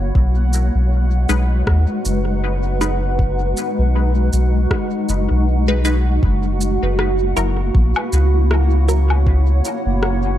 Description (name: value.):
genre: ambient dub.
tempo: 79 BPM.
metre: 4/4.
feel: swing 57% on 16ths.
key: F# mixolydian.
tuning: A4 = 440 Hz.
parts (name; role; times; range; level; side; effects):
granular cloud pad; sustained chords; 0.0-10.4 s; G#3 to F#5; -22 LUFS; equal; built-in reverb.
soft dub sub bass; bass; 0.0-10.4 s; F#1 to D#2; -16 LUFS; equal; none.
bubbling stepped-filter texture; texture; 0.0-6.2 s; F#5; -38 LUFS; right 4 dB; none.
electronic kick drum; drums; 0.2-9.4 s; none; -19 LUFS; equal; overdrive.
electronic shaker, rim click and woodblock; drums; 0.5-10.2 s; none; -26 LUFS; left 1 dB; overdrive, dub echo.
filtered dub chord stab; stabs; 1.3-9.1 s; F#3 to B4; -26 LUFS; left 2 dB; phaser, dub echo.
room: little or no reverb.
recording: dark, warm production.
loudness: -15 LUFS.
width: side -12 dB against mid.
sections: 0.0-6.2 A section; 6.2-10.4 B section.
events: none.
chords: 0.2 B6; 6.2 F#7.